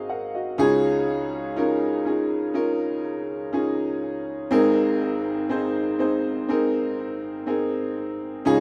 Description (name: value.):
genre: pop.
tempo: 61 BPM.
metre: 4/4.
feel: straight.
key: Db major.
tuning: A4 = 439 Hz.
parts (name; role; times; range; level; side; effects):
clear upright piano; solo; 0.0-8.6 s; Ab1 to Gb5; -24 LUFS; equal; none.
room: small room ambience.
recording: rough home demo mix.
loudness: -24 LUFS.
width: mono.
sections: 0.6-8.6 A section.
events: none.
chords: 0.0 Abadd9; 0.6 Dbadd9; 4.5 Abadd9.